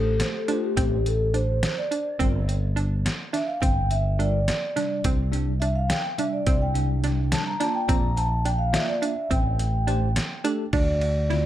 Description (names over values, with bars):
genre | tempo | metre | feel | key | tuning
progressive instrumental, band music in an uneven meter | 211 BPM (eighths) | 5/8 | straight | A phrygian | A4 = 440 Hz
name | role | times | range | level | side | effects
vibraphone with soft mallets | melody | 0.0-11.5 s | F4 to Bb5 | -28 LUFS | equal | tape echo
bell-like tine electric piano | accompaniment | 0.0-11.5 s | C3 to D5 | -31 LUFS | left 1 dB | medium stereo tremolo
hollow square pluck | arpeggios | 0.0-11.5 s | C4 to E4 | -31 LUFS | right 4 dB | chorus, tape echo
fretless electric bass | bass | 0.0-11.5 s | G1 to D2 | -24 LUFS | equal | none
trip hop sampler-style drum kit | drums | 0.2-11.4 s | hi-hat, kick drum, ride cymbal, snare drum | -27 LUFS | equal | overdrive
room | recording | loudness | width
little or no reverb | none | -22 LUFS | side -12 dB against mid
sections
0.0-10.7 A section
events
vibraphone solo 0.0-10.7; kick and snare drop out 10.4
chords
0.0 Am7; 2.2 Gm7; 5.0 Csus2; 7.9 Bb; 9.3 Am7; 10.7 Dm7